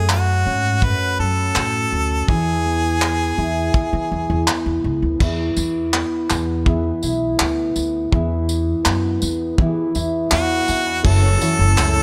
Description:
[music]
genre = acoustic pop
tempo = 82 BPM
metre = 4/4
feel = straight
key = unclear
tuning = A4 = 440 Hz
[part]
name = clear harmonica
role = melody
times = 0.0-4.5, 10.3-12.0 s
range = F#4 to B4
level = -24 LUFS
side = equal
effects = digital delay
[part]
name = fingerpicked steel-string acoustic guitar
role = accompaniment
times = 0.0-12.0 s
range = F#2 to E4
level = -24 LUFS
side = equal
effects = none
[part]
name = upright bass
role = bass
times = 0.0-12.0 s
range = F#1 to E3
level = -24 LUFS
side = equal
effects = none
[part]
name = cloth-damped thuddy drum kit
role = drums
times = 0.1-11.9 s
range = crash cymbal, handclaps, kick drum, tambourine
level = -23 LUFS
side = equal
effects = none
[part]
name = dark upright piano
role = accompaniment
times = 5.2-12.0 s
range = A3 to B5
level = -32 LUFS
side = equal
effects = none
[part]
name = warm studio string section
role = sustained chords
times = 11.0-12.0 s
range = F#3 to C#5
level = -33 LUFS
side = equal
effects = none
[part]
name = tambourine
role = percussion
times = 11.8-11.9 s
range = none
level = -36 LUFS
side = equal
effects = none
[sound]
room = little or no reverb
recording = none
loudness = -19 LUFS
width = mono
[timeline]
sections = 0.0-5.2 A section; 5.2-11.0 B section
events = none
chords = 0.0 F#madd9; 2.3 E; 11.0 F#m7

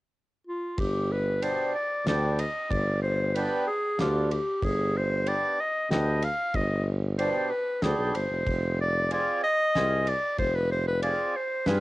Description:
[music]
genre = klezmer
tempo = 94 BPM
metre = 3/4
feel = straight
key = G phrygian dominant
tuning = A4 = 440 Hz
[part]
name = clear clarinet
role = melody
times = 0.5-11.8 s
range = F4 to F5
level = -27 LUFS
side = equal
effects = cassette tape, plate reverb
[part]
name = warm tuba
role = bass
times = 0.8-11.8 s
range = F1 to G2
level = -28 LUFS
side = equal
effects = none
[part]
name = damped 70s drum kit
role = drums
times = 0.8-11.8 s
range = kick drum, ride cymbal, snare drum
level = -36 LUFS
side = equal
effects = cassette tape
[part]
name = mellow accordion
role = accompaniment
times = 1.4-11.8 s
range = B2 to G5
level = -32 LUFS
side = right 1 dB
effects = cassette tape, plate reverb
[sound]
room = moderate studio reverb, RT60 0.6 s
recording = home recording on cassette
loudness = -24 LUFS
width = side -18 dB against mid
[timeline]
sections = 0.8-11.8 A section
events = none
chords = 0.0 N.C.; 0.8 G; 8.5 Fm

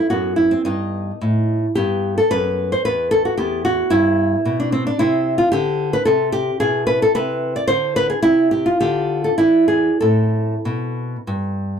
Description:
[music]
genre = classical, baroque-style dance for nylon-string guitar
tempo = 92-114 BPM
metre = 3/4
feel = rubato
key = E minor, A minor from 5.0 s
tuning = A4 = 440 Hz
[part]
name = nylon-string guitar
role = solo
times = 0.0-11.8 s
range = E2 to D5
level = -16 LUFS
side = equal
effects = none
[sound]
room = light reverb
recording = dry, close 1970s-style studio recording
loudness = -16 LUFS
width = side -7 dB against mid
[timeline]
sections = 0.0-11.8 A section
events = none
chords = 0.1 B7/F#; 1.8 Em; 5.0 C69; 6.6 E5/B; 8.3 N.C.; 8.8 Dm; 9.4 E7; 10.0 Am

